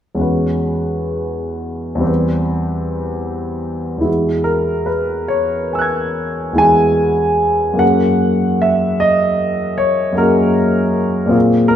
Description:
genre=classical, impressionist solo piano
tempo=42-54 BPM (dotted quarters)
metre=9/8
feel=rubato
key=E lydian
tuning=A4 = 438 Hz
part: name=warm grand piano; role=solo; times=0.1-11.8 s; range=E2 to G#6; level=-14 LUFS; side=equal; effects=none
room=wet recital hall reverb, RT60 1.8 s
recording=recorded in a church or concert hall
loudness=-14 LUFS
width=side -10 dB against mid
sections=0.2-4.1 A section; 4.1-11.8 B section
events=none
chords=0.2 E69; 2.1 Cmaj7/E; 4.1 Eadd9; 7.8 F#add9

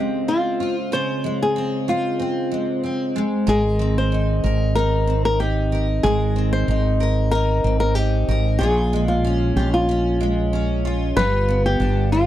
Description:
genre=pop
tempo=94 BPM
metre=4/4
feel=swing 55% on 16ths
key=unclear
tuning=A4 = 440 Hz
part: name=flamenco guitar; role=melody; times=0.0-12.3 s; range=F4 to C5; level=-22 LUFS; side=left 2 dB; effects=none
part: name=picked steel-string acoustic guitar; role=accompaniment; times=0.0-12.3 s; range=Bb2 to Bb4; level=-23 LUFS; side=equal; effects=double-tracked left and right
part: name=mellow fretless electric bass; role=bass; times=3.5-12.3 s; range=G1 to Bb1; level=-20 LUFS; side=equal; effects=none
room=little or no reverb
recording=dry, close 1970s-style studio recording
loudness=-18 LUFS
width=side -12 dB against mid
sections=0.0-12.3 A section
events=none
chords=0.0 Dbmaj7; 3.2 Abadd9; 8.6 Bbm7; 11.2 G7

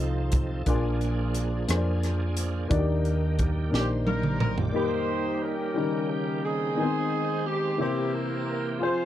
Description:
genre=slow gospel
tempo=59 BPM (dotted quarters)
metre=6/8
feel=straight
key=Eb major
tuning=A4 = 440 Hz
part: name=warm baby grand piano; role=accompaniment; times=0.0-9.1 s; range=Bb2 to F5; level=-29 LUFS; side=left 3 dB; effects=none
part: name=bright tonewheel organ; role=sustained chords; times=0.0-9.1 s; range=Db3 to G5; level=-34 LUFS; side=right 5 dB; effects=fast rotary speaker, overdrive, chorus vibrato
part: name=hollow-body short-scale fingered electric bass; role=bass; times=0.0-4.7 s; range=Bb1 to F2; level=-27 LUFS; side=equal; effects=none
part: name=crisp fusion drum kit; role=drums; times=0.3-4.7 s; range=hi-hat, kick drum, rim click, snare drum, toms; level=-29 LUFS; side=equal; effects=none
part: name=warm horn section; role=melody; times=3.7-9.1 s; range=Bb3 to C5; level=-30 LUFS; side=right 1 dB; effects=none
room=little or no reverb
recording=none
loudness=-24 LUFS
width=side -12 dB against mid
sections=0.0-4.7 A section; 4.7-9.1 B section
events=drum fill 3.7-4.7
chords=0.0 F7; 0.7 Bb7; 2.7 Ebmaj7; 4.7 Eb; 5.8 Eb7; 6.8 Ab/Eb; 7.8 C7

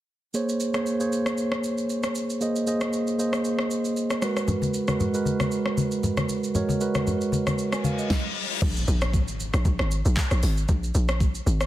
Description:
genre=amapiano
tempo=116 BPM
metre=4/4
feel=swing 55% on 16ths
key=unclear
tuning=A4 = 440 Hz
part: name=mellow tine electric piano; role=accompaniment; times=0.3-8.2 s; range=Ab3 to Ab5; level=-25 LUFS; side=right 2 dB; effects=none
part: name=smooth R&B drum kit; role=drums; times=0.3-11.7 s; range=crash cymbal, handclaps, hi-hat, kick drum, rim click, shaker, snare drum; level=-28 LUFS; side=equal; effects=none
part: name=congas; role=percussion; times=4.5-8.0 s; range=none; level=-27 LUFS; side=left 2 dB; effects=none
part: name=reverse cymbal and impact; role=sound effects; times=7.8-10.7 s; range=none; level=-33 LUFS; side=left 4 dB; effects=none
part: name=hollow log drum bass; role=bass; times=8.6-11.7 s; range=Ab1 to Bb1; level=-23 LUFS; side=equal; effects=none
room=light reverb, digital ambience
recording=heavily compressed radio sound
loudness=-23 LUFS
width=side -14 dB against mid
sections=0.3-8.6 A section; 8.6-11.7 B section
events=reverse cymbal 7.8-8.6; drop 8.6-11.7; impact 8.6-10.7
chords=0.3 Bbm9; 4.2 Abm9; 8.6 Bb7(no3)

